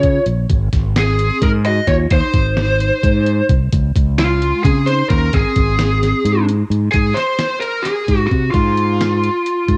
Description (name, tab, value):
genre	progressive instrumental, band music in an uneven meter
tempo	262 BPM (eighths)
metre	7/8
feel	straight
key	Ab mixolydian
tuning	A4 = 440 Hz
part	lead guitar through a small cranked amp	melody	0.0-9.8 s	F4 to Eb5	-20 LUFS	equal	overdrive, cassette tape
part	vibraphone with medium hard mallets	second line	0.0-6.4 s	Ab3 to Gb4	-27 LUFS	equal	cassette tape
part	fretless electric bass	bass	0.0-9.8 s	Ab1 to Db3	-19 LUFS	equal	none
part	lo-fi sampler-style drum kit	drums	0.0-9.8 s	hi-hat, kick drum, snare drum	-20 LUFS	equal	cassette tape
room	light reverb, digital ambience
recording	home recording on cassette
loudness	-16 LUFS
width	mono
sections	0.0-6.9 A section; 6.9-9.8 B section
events	kick and snare drop out 6.2-6.9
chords	0.5 Ab; 3.7 Db; 5.3 Ab; 8.5 Fm/Ab